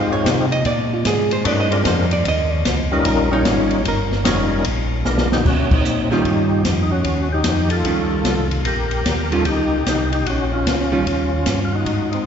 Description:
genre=soul jazz organ trio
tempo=150 BPM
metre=4/4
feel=swing 65% on 8ths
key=Eb mixolydian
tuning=A4 = 440 Hz
part: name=percussive tonewheel organ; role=melody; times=0.0-12.3 s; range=G3 to Db5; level=-21 LUFS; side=left 2 dB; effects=slow rotary speaker, overdrive, chorus vibrato
part: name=archtop guitar, miked and amplified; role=accompaniment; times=0.0-11.0 s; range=Eb3 to F5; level=-23 LUFS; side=right 3 dB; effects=none
part: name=mellow tonewheel organ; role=bass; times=0.0-12.2 s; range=F1 to C3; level=-22 LUFS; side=equal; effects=slow rotary speaker
part: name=open jazz drum kit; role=drums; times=0.3-12.2 s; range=crash cymbal, hi-hat, kick drum, ride cymbal, snare drum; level=-22 LUFS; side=left 1 dB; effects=none
room=wet church reverb, RT60 2.7 s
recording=recorded in a church or concert hall, nothing above 7.6 kHz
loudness=-16 LUFS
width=side -8 dB against mid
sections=0.0-5.4 A section; 5.4-12.3 B section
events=hollow-body jazz guitar solo 0.0-5.4; drum fill 5.0-5.4; band accent 5.6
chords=0.0 Fm7; 0.7 Bb9; 2.2 Eb9; 4.6 Bb7b9; 5.4 Eb9; 10.3 Bbm; 11.1 Eb9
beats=0.26 | 0.65 1.05 1.45 1.85 | 2.25 2.65 3.05 3.45 | 3.85 4.25 4.65 5.04 | 5.45 5.85 6.25 6.65 | 7.05 7.45 7.85 8.25 | 8.65 9.05 9.45 9.85 | 10.25 10.65 11.05 11.46 | 11.86 12.26

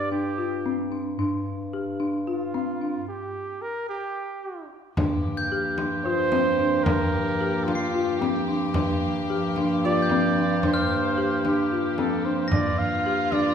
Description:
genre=contemporary instrumental, chamber music in an uneven meter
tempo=222 BPM (eighths)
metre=7/8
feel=straight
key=G minor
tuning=A4 = 441 Hz
part: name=warm flugelhorn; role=melody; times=0.0-13.5 s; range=F4 to F5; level=-28 LUFS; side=right 3 dB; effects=none
part: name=folk marimba with medium hard mallets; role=arpeggios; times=0.0-13.5 s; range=C4 to G4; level=-27 LUFS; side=left 2 dB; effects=none
part: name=dark bass clarinet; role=bass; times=0.0-13.5 s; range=G2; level=-28 LUFS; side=left 1 dB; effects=none
part: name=rich chamber string section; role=sustained chords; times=5.0-13.5 s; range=F3 to G4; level=-30 LUFS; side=equal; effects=none
part: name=frame drum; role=percussion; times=5.0-13.5 s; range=none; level=-30 LUFS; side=equal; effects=none
part: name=glockenspiel with hard plastic mallets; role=texture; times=5.4-13.5 s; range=F6 to C7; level=-32 LUFS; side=left 1 dB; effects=none
room=wet recital hall reverb, RT60 1.6 s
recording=heard from further back in the room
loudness=-22 LUFS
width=side -8 dB against mid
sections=0.0-5.0 A section; 5.0-13.5 B section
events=stop 3.1-5.0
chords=0.0 G7sus4; 3.1 N.C.; 5.0 Gm7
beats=0.11 0.38 0.65 0.92 | 1.19 1.46 1.73 2.00 2.27 2.54 2.81 | 3.08 3.35 3.62 3.90 4.17 4.43 4.71 | 4.97 5.25 5.51 5.79 6.05 6.33 6.59 | 6.87 7.13 7.41 7.67 7.94 8.21 8.48 | 8.75 9.02 9.29 9.56 9.83 10.10 10.37 | 10.64 10.91 11.18 11.45 11.72 11.99 12.26 | 12.53 12.80 13.07 13.34

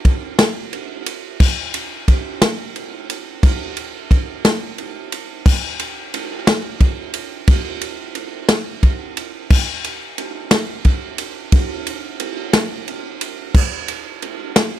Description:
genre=rock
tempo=59 BPM (dotted quarters)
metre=6/8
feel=straight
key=none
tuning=none
part: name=natural country drum kit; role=drums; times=0.0-14.7 s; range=crash cymbal, kick drum, ride cymbal, snare drum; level=-17 LUFS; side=equal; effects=none
room=little or no reverb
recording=dry, close 1970s-style studio recording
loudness=-17 LUFS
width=side -12 dB against mid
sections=0.0-5.5 A section; 5.5-14.8 B section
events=none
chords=none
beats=0.39 | 1.41 2.42 | 3.43 4.45 | 5.46 6.47 | 7.48 8.49 | 9.50 10.51 | 11.52 12.53 | 13.54 14.55

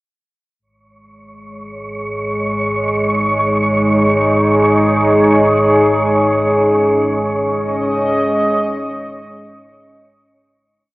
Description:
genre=dark ambient drone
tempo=free time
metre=none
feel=none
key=unclear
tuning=A4 = 443 Hz
part: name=deep dark ambient pad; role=sustained chords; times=1.9-10.6 s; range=G#3 to D#5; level=-15 LUFS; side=equal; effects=chorus, built-in reverb
part: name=deep rumbling drone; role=drone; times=1.9-10.7 s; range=G#1 to G#2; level=-24 LUFS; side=equal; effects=built-in reverb
part: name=wind-like tuned noise texture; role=texture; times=1.6-10.6 s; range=C#5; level=-19 LUFS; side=right 1 dB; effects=built-in reverb
room=wet cathedral reverb, RT60 7.0 s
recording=cassette tape, small speaker sound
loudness=-12 LUFS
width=side -19 dB against mid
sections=0.6-10.6 A section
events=fade-in on ambient pad 0.6-10.6; fade-in on synth texture 0.6-10.6; fade-out 5.6-10.6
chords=0.6 G#5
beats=free time

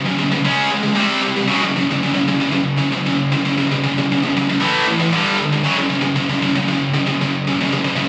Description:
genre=metal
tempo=116 BPM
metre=4/4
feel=straight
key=F# minor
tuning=A4 = 440 Hz
part: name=heavy high-gain guitar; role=solo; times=0.0-8.1 s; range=F#2 to C#4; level=-18 LUFS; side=equal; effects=distortion
room=light reverb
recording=recorded on a phone in the room, club reverb, compression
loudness=-17 LUFS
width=mono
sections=0.0-8.1 A section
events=none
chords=0.5 C#5; 1.0 C5; 1.5 F#5; 4.6 A5; 5.1 G5; 5.6 F#5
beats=0.47 0.98 | 1.50 2.02 2.54 3.06 | 3.57 4.09 4.61 5.12 | 5.64 6.16 6.68 7.19 | 7.71

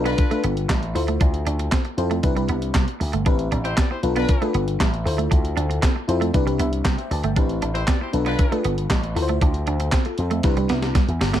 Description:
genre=early-eighties boogie funk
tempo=117 BPM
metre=4/4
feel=straight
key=unclear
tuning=A4 = 441 Hz
part: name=FM electric piano with soft pad layer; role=accompaniment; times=0.0-11.0 s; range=C4 to A5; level=-26 LUFS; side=left 3 dB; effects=chorus
part: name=slap bass with an envelope filter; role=bass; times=0.0-11.4 s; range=G1 to C3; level=-24 LUFS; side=equal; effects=none
part: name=warm horn section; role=second line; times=0.1-0.4, 3.6-4.5, 7.7-8.6 s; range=D4 to D5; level=-28 LUFS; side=left 4 dB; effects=none
part: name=semi-hollow electric guitar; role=riff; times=0.1-11.4 s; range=G3 to D4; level=-29 LUFS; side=right 9 dB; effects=wide subtle chorus
part: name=crisp 8-bit digital drum machine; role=drums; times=0.1-11.4 s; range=handclaps, hi-hat, kick drum, snare drum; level=-21 LUFS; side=equal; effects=none
room=little or no reverb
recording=dark, warm production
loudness=-19 LUFS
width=side -11 dB against mid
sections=0.0-11.4 A section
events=FM electric piano fill 6.3-7.4; drum fill 10.4-11.4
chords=0.0 Bm7b5; 1.0 Dm9; 2.2 Cmaj9; 3.3 Am9; 4.0 Bm7b5; 5.1 Dm9; 6.3 Cmaj9; 7.4 Am9; 8.1 Bm7b5; 9.2 Dm9; 10.4 Cmaj9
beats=0.19 0.70 | 1.21 1.72 2.24 2.75 | 3.26 3.77 4.29 4.80 | 5.31 5.83 6.34 6.85 | 7.37 7.88 8.39 8.90 | 9.42 9.93 10.44 10.96

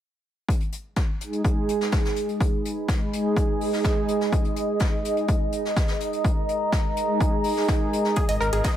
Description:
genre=melodic techno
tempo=125 BPM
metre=4/4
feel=straight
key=G# minor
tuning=A4 = 440 Hz
part: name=electronic kick drum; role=drums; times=0.5-8.7 s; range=none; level=-24 LUFS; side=equal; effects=small room reverb
part: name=jazz brush drum kit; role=drums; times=0.5-8.8 s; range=hi-hat, snare drum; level=-36 LUFS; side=left 2 dB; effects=high-pass filter on hats, small room reverb, high-pass filter on snare, high-pass filter on room
part: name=deep dark ambient pad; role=texture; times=2.3-8.8 s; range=D#4 to B5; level=-28 LUFS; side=right 1 dB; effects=chorus, built-in reverb, sidechain pumping
part: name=brassy analog pad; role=stabs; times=1.2-8.2 s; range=G#3 to G#4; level=-26 LUFS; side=right 2 dB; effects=chorus, sidechain pumping, analog delay
part: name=wide unison pluck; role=arpeggios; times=8.2-8.7 s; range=G#4 to D#5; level=-25 LUFS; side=right 1 dB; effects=sidechain pumping, analog delay
part: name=electronic hi-hat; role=drums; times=8.2-8.7 s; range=none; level=-36 LUFS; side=right 2 dB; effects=small room reverb
part: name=dark detuned saw bass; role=bass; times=8.3-8.6 s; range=G#1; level=-26 LUFS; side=equal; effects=sidechain pumping
room=moderate lush hall reverb, RT60 1.7 s, small room ambience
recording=dreamy mix soaked in reverb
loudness=-22 LUFS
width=side -11 dB against mid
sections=0.5-8.8 A section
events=none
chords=0.5 G#m; 8.2 D#5/G#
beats=| 0.48 0.96 1.45 1.93 | 2.40 2.88 3.37 3.85 | 4.33 4.80 5.29 5.76 | 6.25 6.72 7.21 7.68 | 8.16 8.64

